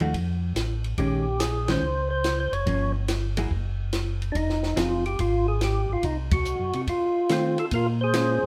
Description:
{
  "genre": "soul jazz organ trio",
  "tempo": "142 BPM",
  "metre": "4/4",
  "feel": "swing 68% on 8ths",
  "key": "F minor",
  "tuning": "A4 = 440 Hz",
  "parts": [
    { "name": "hollow-body jazz guitar", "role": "accompaniment", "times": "0.0-8.4 s", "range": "Eb3 to Ab4", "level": "-31 LUFS", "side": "equal", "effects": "none" },
    { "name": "mellow tonewheel organ", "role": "bass", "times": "0.0-8.5 s", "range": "F1 to C3", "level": "-30 LUFS", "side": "equal", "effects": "slow rotary speaker" },
    { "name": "compact cocktail drum kit", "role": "drums", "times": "0.0-8.3 s", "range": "hi-hat, kick drum, ride cymbal, snare drum", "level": "-32 LUFS", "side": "equal", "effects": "none" },
    { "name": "percussive tonewheel organ", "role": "melody", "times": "1.0-8.5 s", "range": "C4 to Db5", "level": "-28 LUFS", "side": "equal", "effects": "slow rotary speaker, overdrive" }
  ],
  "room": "moderate studio reverb, RT60 0.8 s",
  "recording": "heard from further back in the room",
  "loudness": "-25 LUFS",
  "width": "mono",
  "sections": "0.0-7.7 A section",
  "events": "band accent 1.6, 6.3",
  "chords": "0.1 F; 1.0 Bbm11; 2.7 Gm7b5; 3.5 N.C.; 4.4 Fm7; 6.0 Cdim; 6.9 F7; 7.7 Bbm7",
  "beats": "0.14 0.56 | 0.98 1.41 1.83 2.25 | 2.67 3.09 3.51 3.93 | 4.36 4.78 5.20 5.62 | 6.04 6.46 6.88 7.31 | 7.73 8.15"
}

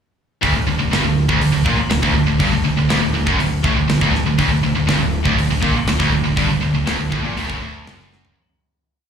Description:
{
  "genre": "heavy metal",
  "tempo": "121 BPM",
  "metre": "4/4",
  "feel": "straight",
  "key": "D major",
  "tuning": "A4 = 439 Hz",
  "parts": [
    { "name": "distorted electric guitar", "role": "riff", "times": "0.4-8.4 s", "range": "D2 to Bb2", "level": "-22 LUFS", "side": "left 8 dB", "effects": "distortion" },
    { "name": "heavy high-gain guitar", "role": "riff", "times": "0.4-8.4 s", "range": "D2 to Bb2", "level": "-21 LUFS", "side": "equal", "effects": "distortion" },
    { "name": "scooped high-gain guitar", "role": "riff", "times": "0.4-8.4 s", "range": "D2 to Bb2", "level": "-22 LUFS", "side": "right 10 dB", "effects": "distortion, slapback echo" },
    { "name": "modern bright picked electric bass", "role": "bass", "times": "0.4-8.3 s", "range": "D1 to Bb1", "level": "-21 LUFS", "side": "equal", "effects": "none" },
    { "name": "tight metal drum kit", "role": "drums", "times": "0.4-8.4 s", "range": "hi-hat, kick drum, snare drum, toms", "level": "-23 LUFS", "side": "equal", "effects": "none" }
  ],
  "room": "light reverb",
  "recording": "live gig heard through the venue's PA, club reverb",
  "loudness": "-15 LUFS",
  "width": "side -7 dB against mid",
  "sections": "0.4-8.4 riff",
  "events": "fade-out 6.4-8.4; drum fill 8.1",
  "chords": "0.4 D",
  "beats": "| 0.42 0.92 1.41 1.91 | 2.40 2.90 3.39 3.89 | 4.38 4.88 5.38 5.88 | 6.38 6.87 7.37 7.87"
}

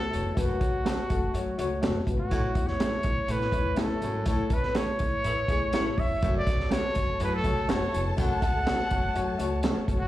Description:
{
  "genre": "uptempo 1960s-style soul",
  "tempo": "123 BPM",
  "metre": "4/4",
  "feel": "straight",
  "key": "unclear",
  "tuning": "A4 = 440 Hz",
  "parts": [
    { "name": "breathy trumpet", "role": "melody", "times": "0.0-10.1 s", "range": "F#4 to F#5", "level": "-30 LUFS", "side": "equal", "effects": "plate reverb, slapback echo, tape echo" },
    { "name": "dark upright piano", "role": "accompaniment", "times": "0.0-10.1 s", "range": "A2 to E5", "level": "-33 LUFS", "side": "left 4 dB", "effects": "plate reverb, slapback echo" },
    { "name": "mellow electric guitar", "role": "stabs", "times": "0.0-9.8 s", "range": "A3 to A4", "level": "-33 LUFS", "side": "right 4 dB", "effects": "plate reverb, slapback echo" },
    { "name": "upright bass", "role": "bass", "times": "0.0-10.1 s", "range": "F1 to A2", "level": "-33 LUFS", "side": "equal", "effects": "none" },
    { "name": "breathy baritone saxophone", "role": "riff", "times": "0.1-8.4 s", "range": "E2 to A2", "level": "-38 LUFS", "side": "right 2 dB", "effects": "slapback echo" },
    { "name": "crunchy breakbeat drum kit", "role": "drums", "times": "0.1-10.0 s", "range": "hi-hat, kick drum, snare drum", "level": "-29 LUFS", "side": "equal", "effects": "none" },
    { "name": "mellow horn section", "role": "second line", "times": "5.2-6.1 s", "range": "A3 to C#5", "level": "-40 LUFS", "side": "right 1 dB", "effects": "plate reverb, slapback echo" },
    { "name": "warm symphonic violin section", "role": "second line", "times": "6.2-10.1 s", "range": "A4 to A5", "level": "-37 LUFS", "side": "equal", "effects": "plate reverb, slapback echo" }
  ],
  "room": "light reverb",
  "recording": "live gig heard through the venue's PA, club reverb",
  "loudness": "-25 LUFS",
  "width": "side -14 dB against mid",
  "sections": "0.0-10.1 A section",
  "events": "band accent 4.3-6.2",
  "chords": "0.0 F#m; 2.3 A; 6.2 F#m",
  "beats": "| 0.37 0.86 1.35 1.83 | 2.32 2.81 3.30 3.79 | 4.28 4.76 5.25 5.74 | 6.23 6.71 7.20 7.69 | 8.18 8.67 9.16 9.64"
}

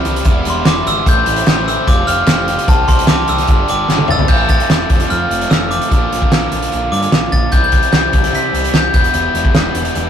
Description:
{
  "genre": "indie rock",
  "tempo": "149 BPM",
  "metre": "4/4",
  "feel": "straight",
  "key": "C major",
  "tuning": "A4 = 440 Hz",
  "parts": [
    { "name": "airy breathy pad", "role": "sustained chords", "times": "0.0-4.3, 7.5-10.1 s", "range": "G4 to C6", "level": "-29 LUFS", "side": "left 2 dB", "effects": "chorus" },
    { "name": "biting overdriven guitar", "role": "riff", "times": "0.0-10.1 s", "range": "E2 to G4", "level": "-20 LUFS", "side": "right 1 dB", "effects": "spring reverb" },
    { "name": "growling picked electric bass", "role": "bass", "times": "0.1-10.1 s", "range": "E1 to C3", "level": "-22 LUFS", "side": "equal", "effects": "overdrive" },
    { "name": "loose indie drum kit", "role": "drums", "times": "0.1-10.0 s", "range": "crash cymbal, hi-hat, kick drum, snare drum, toms", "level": "-14 LUFS", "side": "equal", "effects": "none" },
    { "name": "glockenspiel with brass mallets", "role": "melody", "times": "0.5-10.1 s", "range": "A5 to B6", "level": "-17 LUFS", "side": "left 3 dB", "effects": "none" },
    { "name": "group handclap", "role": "percussion", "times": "0.7-4.0 s", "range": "none", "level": "-27 LUFS", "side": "left 3 dB", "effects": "none" }
  ],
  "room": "light reverb",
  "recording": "rough rehearsal-room recording, warm saturation",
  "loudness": "-11 LUFS",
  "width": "side -8 dB against mid",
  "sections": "0.0-4.3 A section; 4.3-10.1 B section",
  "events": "glockenspiel solo 0.0-4.3; drum fill 3.9-4.3",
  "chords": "0.3 Em7; 1.1 Amadd9; 1.9 Fsus2; 2.7 Cadd9; 3.5 G; 4.3 Am; 4.9 F; 5.9 Bb; 7.5 Cmaj7; 8.9 Em",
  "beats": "0.26 0.66 | 1.06 1.47 1.87 2.28 | 2.68 3.08 3.49 3.89 | 4.29 4.70 5.10 5.51 | 5.91 6.32 6.72 7.12 | 7.53 7.93 8.34 8.74 | 9.14 9.55 9.95"
}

